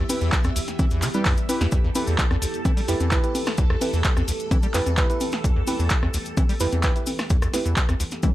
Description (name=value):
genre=acid house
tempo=129 BPM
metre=4/4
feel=straight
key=E minor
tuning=A4 = 441 Hz
part: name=string machine, full ensemble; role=sustained chords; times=0.0-8.3 s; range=E3 to E5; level=-32 LUFS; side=equal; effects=ensemble chorus, sidechain pumping
part: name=acid bass, square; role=riff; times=0.0-8.3 s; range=D2 to G3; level=-26 LUFS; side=equal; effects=overdrive, lush chorus, sidechain pumping
part: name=deep mellow chord stab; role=stabs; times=0.1-7.6 s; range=E4 to B4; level=-28 LUFS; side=right 3 dB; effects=chorus, analog delay
part: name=punchy analog drum machine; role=drums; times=0.1-8.3 s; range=congas, handclaps, hi-hat, rim click, snare drum, toms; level=-27 LUFS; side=left 1 dB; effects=none
part: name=cabasa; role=percussion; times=0.1-8.3 s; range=none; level=-34 LUFS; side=left 5 dB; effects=none
part: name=electronic kick drum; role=drums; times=0.3-8.3 s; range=none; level=-22 LUFS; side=equal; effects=none
room=little or no reverb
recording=none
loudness=-20 LUFS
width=side -15 dB against mid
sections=0.0-8.3 A section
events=none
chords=0.0 Em